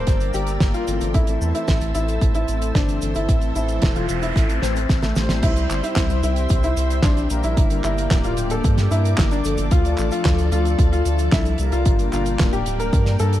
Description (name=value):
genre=italo disco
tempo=112 BPM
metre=4/4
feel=straight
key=G dorian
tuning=A4 = 439 Hz
part: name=warm baby grand piano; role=melody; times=0.0-13.4 s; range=A3 to C5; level=-25 LUFS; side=left 2 dB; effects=digital delay, shimmer reverb
part: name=string machine, full ensemble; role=sustained chords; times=0.0-13.4 s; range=Bb3 to E6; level=-31 LUFS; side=equal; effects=ensemble chorus, shimmer reverb
part: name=mellow synth brass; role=stabs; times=0.0-13.4 s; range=E3 to C5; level=-28 LUFS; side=left 3 dB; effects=chorus, shimmer reverb
part: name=round analog bass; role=bass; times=0.0-13.4 s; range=D1 to G2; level=-22 LUFS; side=equal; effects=none
part: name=damped 70s drum kit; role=drums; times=0.1-13.4 s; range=cabasa, crash cymbal, handclaps, hi-hat, snare drum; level=-26 LUFS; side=right 1 dB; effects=none
part: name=electronic kick drum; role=drums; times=0.1-13.0 s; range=none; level=-19 LUFS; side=equal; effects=none
part: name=noise sweep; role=sound effects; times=3.8-5.4 s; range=none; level=-32 LUFS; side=right 1 dB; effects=none
room=small room ambience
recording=dark, warm production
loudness=-17 LUFS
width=side -13 dB against mid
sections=0.0-5.4 A section; 5.4-13.4 B section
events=noise sweep 3.8-5.4; drum fill 4.6-5.4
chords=0.0 Gm; 1.1 Am; 5.4 C; 7.6 Gm; 9.7 Dm; 11.9 Gm